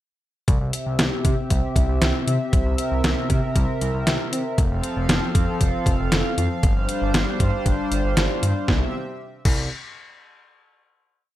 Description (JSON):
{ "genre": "synth-pop", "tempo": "117 BPM", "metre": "4/4", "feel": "straight", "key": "C major", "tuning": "A4 = 437 Hz", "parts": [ { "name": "chorused pulse-width pad", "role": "sustained chords", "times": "0.5-8.9 s", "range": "C3 to F5", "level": "-26 LUFS", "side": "equal", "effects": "none" }, { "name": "smooth synth bass", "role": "bass", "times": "0.5-9.7 s", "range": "F1 to C3", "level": "-24 LUFS", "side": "equal", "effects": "none" }, { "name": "detuned 8-bit digital drum machine", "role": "drums", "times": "0.5-9.6 s", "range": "crash cymbal, hi-hat, kick drum, snare drum", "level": "-21 LUFS", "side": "equal", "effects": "none" } ], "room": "little or no reverb", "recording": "none", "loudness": "-19 LUFS", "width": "side -14 dB against mid", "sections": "0.5-8.7 verse; 8.7-10.7 final chord", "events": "none", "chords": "0.5 C; 2.5 C7; 4.6 F; 6.6 G7sus4; 8.7 N.C." }